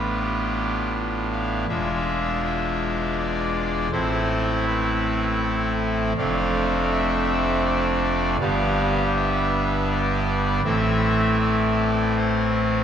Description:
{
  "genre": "classical, chorale-style piece for pipe organ",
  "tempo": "80 BPM",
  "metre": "3/4",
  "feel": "rubato",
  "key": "A minor",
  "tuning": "A4 = 439 Hz",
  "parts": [
    { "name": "pipe organ, trumpet", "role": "solo", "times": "0.0-12.8 s", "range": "E1 to F5", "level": "-20 LUFS", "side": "equal", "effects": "none" }
  ],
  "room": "wet church reverb, RT60 3.3 s",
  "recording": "none",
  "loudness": "-20 LUFS",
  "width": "side -8 dB against mid",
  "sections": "0.0-12.8 A section",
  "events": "none",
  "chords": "0.0 Bdim/A; 1.7 E7b9; 3.9 Am; 6.2 Dm7/F; 8.4 G; 10.6 Am"
}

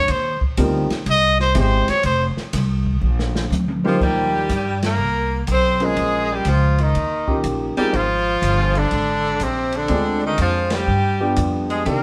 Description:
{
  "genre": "jazz, small-group swing and bop",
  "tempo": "122 BPM",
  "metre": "4/4",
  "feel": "swing 67% on 8ths",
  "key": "Eb major",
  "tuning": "A4 = 440 Hz",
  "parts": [
    { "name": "warm trumpet", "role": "melody", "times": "0.0-12.0 s", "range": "C4 to Eb5", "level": "-23 LUFS", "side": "equal", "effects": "none" },
    { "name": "upright bass", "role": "bass", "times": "0.0-12.0 s", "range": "F1 to C3", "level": "-24 LUFS", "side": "equal", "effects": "none" },
    { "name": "open jazz drum kit", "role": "drums", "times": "0.1-12.0 s", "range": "crash cymbal, hi-hat, kick drum, ride cymbal, snare drum, toms", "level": "-30 LUFS", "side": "equal", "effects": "none" },
    { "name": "warm baby grand piano", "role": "accompaniment", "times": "0.6-12.0 s", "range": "Eb3 to C5", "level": "-25 LUFS", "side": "equal", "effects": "none" },
    { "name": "edgy tenor saxophone", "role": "second line", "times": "3.9-12.0 s", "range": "C3 to C4", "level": "-26 LUFS", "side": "equal", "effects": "none" }
  ],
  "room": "moderate stone room reverb, RT60 1.1 s",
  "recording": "band playing live in one room",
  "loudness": "-19 LUFS",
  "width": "mono",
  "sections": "0.0-4.0 A section; 4.0-12.0 B section",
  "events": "trumpet solo 0.0-4.0; drum fill 3.0-4.0; band accent 4.7, 10.6",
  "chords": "0.1 Eb69; 1.1 C; 2.0 F5; 3.0 Bbadd9; 4.0 Eb69; 6.0 Bbm7; 6.9 Eb7; 7.9 Absus2; 9.9 Dm7b5; 10.9 G7"
}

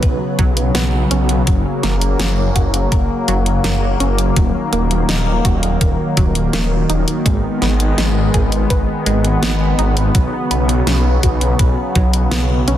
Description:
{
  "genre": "synthwave",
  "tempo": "83 BPM",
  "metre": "4/4",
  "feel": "straight",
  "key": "G# minor",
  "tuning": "A4 = 440 Hz",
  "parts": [
    { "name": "lush unison pad", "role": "sustained chords", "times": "0.0-12.8 s", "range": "C#3 to B3", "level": "-19 LUFS", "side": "left 1 dB", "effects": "chorus, phaser, sidechain pumping" },
    { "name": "wide unison pluck", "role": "arpeggios", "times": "0.0-12.8 s", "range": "F#3 to B4", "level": "-24 LUFS", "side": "right 2 dB", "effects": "tape echo" },
    { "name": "wide detuned saw bass", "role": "bass", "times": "0.0-12.8 s", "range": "D#1 to B1", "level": "-17 LUFS", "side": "equal", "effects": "chorus" },
    { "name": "electronic kick drum", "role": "drums", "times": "0.0-12.1 s", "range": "none", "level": "-16 LUFS", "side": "equal", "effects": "none" },
    { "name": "pop drum kit", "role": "drums", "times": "0.0-12.8 s", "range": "hi-hat, snare drum", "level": "-23 LUFS", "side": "equal", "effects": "none" }
  ],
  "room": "light reverb, digital ambience",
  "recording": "dense, heavily limited modern master",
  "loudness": "-13 LUFS",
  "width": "side -12 dB against mid",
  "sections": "0.0-12.8 A section",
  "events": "none",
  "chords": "0.0 Bsus2; 1.5 F#; 4.4 D#m; 7.3 G#m; 10.1 Bsus2"
}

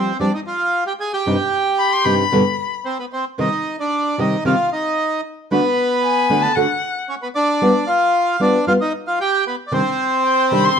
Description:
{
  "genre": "tango",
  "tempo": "114 BPM",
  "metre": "4/4",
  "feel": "rubato",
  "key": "C harmonic minor",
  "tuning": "A4 = 441 Hz",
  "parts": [
    { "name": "bandoneon", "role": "melody", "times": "0.0-10.8 s", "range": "B3 to Ab5", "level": "-18 LUFS", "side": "right 1 dB", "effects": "none" },
    { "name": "nylon-string guitar", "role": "accompaniment", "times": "0.0-10.7 s", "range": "G2 to G4", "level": "-18 LUFS", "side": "equal", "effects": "none" },
    { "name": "dark violin", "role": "second line", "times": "1.8-2.7, 6.0-6.9, 10.2-10.8 s", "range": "F#5 to C6", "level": "-19 LUFS", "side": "left 7 dB", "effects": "none" }
  ],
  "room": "moderate stone room reverb, RT60 1.0 s",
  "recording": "band playing live in one room",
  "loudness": "-16 LUFS",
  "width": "side -7 dB against mid",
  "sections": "0.0-10.8 A section",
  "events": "none",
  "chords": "0.0 Fsus2; 1.3 Cm/G; 2.3 G; 3.4 Cm; 5.5 D; 7.6 G7; 9.7 Cmadd9"
}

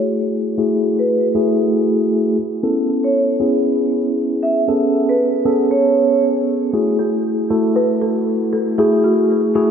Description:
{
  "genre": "deep house",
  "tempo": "117 BPM",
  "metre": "4/4",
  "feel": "swing 60% on 16ths",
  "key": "F# minor",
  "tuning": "A4 = 441 Hz",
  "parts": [
    { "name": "mellow tine electric piano", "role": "stabs", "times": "0.0-9.7 s", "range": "A3 to A4", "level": "-16 LUFS", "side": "equal", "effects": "fast stereo tremolo, low-pass filter, tape echo" },
    { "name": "vibraphone with hard mallets", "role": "melody", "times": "1.0-6.2 s", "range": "B4 to E5", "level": "-20 LUFS", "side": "right 2 dB", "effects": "low-pass filter, analog delay" },
    { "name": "folk marimba with soft mallets", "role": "melody", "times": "7.0-9.7 s", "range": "F#4 to B4", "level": "-20 LUFS", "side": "right 1 dB", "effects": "tape echo" }
  ],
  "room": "wet lush hall reverb, RT60 2.8 s",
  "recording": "dreamy mix soaked in reverb, low-pass filter",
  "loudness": "-14 LUFS",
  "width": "side -7 dB against mid",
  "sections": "0.0-9.7 A section",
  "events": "filter sweep on tine electric piano 0.0-9.7; filter sweep 0.0-9.7",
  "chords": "0.0 F#m9; 2.4 B9sus4; 4.7 Amaj9; 6.7 F#m9"
}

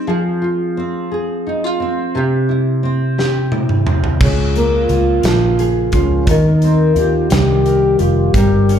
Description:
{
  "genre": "six-eight pop ballad",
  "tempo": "58 BPM (dotted quarters)",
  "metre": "6/8",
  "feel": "straight",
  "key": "unclear",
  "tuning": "A4 = 441 Hz",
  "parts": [
    { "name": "nylon-string guitar", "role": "accompaniment", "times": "0.0-8.8 s", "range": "C3 to Bb4", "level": "-16 LUFS", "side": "left 1 dB", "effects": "double-tracked left and right, plate reverb, slapback echo" },
    { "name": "huge arena drum kit", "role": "drums", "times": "3.2-8.8 s", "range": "crash cymbal, hi-hat, kick drum, snare drum, toms", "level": "-18 LUFS", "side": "right 1 dB", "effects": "none" },
    { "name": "dark French horn section", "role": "second line", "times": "4.2-8.8 s", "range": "Db4 to G4", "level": "-18 LUFS", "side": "equal", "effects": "plate reverb, slapback echo" },
    { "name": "vintage muted fingered electric bass", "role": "bass", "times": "4.2-8.8 s", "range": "F1 to Eb2", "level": "-16 LUFS", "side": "right 1 dB", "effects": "none" }
  ],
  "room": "moderate club reverb, RT60 0.5 s",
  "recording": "live gig heard through the venue's PA, club reverb",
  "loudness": "-13 LUFS",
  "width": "side -9 dB against mid",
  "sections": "0.0-4.2 A section; 4.2-8.8 B section",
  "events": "drum fill 3.2-4.2",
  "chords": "0.1 Fm; 2.1 C; 4.2 Db6; 6.3 Eb6"
}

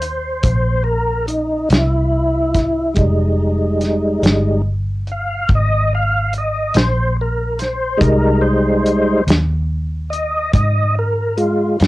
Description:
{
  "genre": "slow blues",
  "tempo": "48 BPM (dotted quarters)",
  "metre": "12/8",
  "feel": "straight",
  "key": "F minor",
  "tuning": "A4 = 439 Hz",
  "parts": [
    { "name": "tonewheel organ", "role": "sustained chords", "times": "0.0-11.8 s", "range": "G3 to F5", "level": "-17 LUFS", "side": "equal", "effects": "slow rotary speaker, overdrive, chorus vibrato" },
    { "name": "vintage muted fingered electric bass", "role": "bass", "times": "0.0-11.9 s", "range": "F1 to Ab2", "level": "-18 LUFS", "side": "equal", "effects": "none" },
    { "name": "warm soul drum kit", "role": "drums", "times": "0.0-11.9 s", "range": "hi-hat, kick drum, snare drum", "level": "-17 LUFS", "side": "equal", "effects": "cassette tape" }
  ],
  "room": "light reverb",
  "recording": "home recording on cassette",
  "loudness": "-14 LUFS",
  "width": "side -18 dB against mid",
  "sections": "0.0-11.9 A section",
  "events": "tonewheel organ solo 0.0-11.9",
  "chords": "0.0 C7#9; 3.0 Fm9"
}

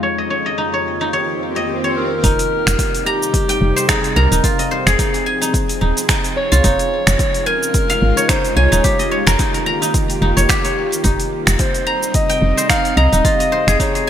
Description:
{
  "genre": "organic downtempo",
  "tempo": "109 BPM",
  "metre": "4/4",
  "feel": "swing 56% on 16ths",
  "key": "unclear",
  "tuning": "A4 = 440 Hz",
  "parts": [
    { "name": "bowed-like drone", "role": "sustained chords", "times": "0.0-14.1 s", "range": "F2 to Ab4", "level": "-23 LUFS", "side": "right 1 dB", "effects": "built-in reverb, sidechain pumping" },
    { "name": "guzheng", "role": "arpeggios", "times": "0.0-14.1 s", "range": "Eb4 to Bb5", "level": "-20 LUFS", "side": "left 1 dB", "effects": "ping-pong delay" },
    { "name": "swell", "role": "sound effects", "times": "1.4-2.2 s", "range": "none", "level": "-25 LUFS", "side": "right 1 dB", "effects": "none" },
    { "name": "mellow clarinet", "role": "melody", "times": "2.0-14.1 s", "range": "G4 to F5", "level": "-20 LUFS", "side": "equal", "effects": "ping-pong delay" },
    { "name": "woody FM bass", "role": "bass", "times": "2.2-13.8 s", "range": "Eb1 to C2", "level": "-15 LUFS", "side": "equal", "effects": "sidechain pumping" },
    { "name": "deep house drum kit", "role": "drums", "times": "2.2-14.1 s", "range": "cabasa, finger snaps, hi-hat", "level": "-20 LUFS", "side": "right 1 dB", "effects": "overdrive, gated reverb" },
    { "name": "electronic kick drum", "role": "drums", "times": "2.2-13.9 s", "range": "none", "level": "-20 LUFS", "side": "equal", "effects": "overdrive" }
  ],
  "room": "light reverb, digital ambience",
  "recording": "bright 1980s-style digital production, low-pass filter",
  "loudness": "-14 LUFS",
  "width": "side -10 dB against mid",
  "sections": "0.0-2.2 A section; 2.2-14.1 B section",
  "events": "swell 1.4-2.2",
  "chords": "0.0 Eb7/F; 2.2 Cm7/F; 4.4 Fm7; 6.6 Dbadd9/F; 8.8 Eb7/F; 11.0 Cm7/F; 13.2 Fm7"
}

